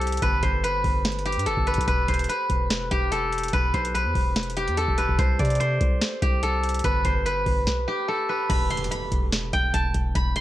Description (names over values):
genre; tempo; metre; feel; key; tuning
hip hop, trap; 145 BPM; 4/4; half-time; E minor; A4 = 439 Hz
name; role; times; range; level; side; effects
steel-string zither; melody; 0.0-10.4 s; G4 to C6; -25 LUFS; equal; low-pass filter, cassette tape, tape echo
long sustained 808-style bass; bass; 0.0-10.4 s; E1 to C3; -28 LUFS; equal; none
booming analog drum machine; drums; 0.0-10.4 s; crash cymbal, hi-hat, kick drum, snare drum; -25 LUFS; equal; cassette tape
impact; sound effects; 8.5-10.2 s; none; -36 LUFS; equal; none
room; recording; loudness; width
digital ambience; home recording on cassette; -21 LUFS; side -14 dB against mid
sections
0.0-8.5 A section; 8.5-10.4 B section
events
stop 7.7-8.5; impact 8.5-10.2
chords
0.2 G; 1.9 E5; 5.2 Csus2; 6.8 G; 8.5 E5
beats
| 0.22 0.64 1.05 1.46 | 1.88 2.29 2.70 3.12 | 3.53 3.94 4.36 4.77 | 5.19 5.60 6.01 6.43 | 6.84 7.26 7.67 8.08 | 8.50 8.91 9.32 9.74 | 10.15